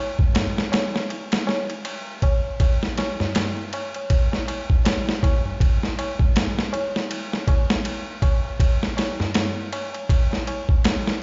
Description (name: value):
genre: trip hop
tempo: 80 BPM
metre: 4/4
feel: swing 58% on 16ths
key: none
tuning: none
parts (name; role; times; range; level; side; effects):
- boom bap sampler-style drum kit; drums; 0.2-11.2 s; kick drum, ride cymbal, snare drum; -23 LUFS; equal; none
- tabla; percussion; 0.2-11.0 s; none; -32 LUFS; equal; none
room: light reverb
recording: played on a big sound system in a bare room, stone room reverb, nothing above 7.5 kHz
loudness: -23 LUFS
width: mono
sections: 0.0-11.2 A section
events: none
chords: none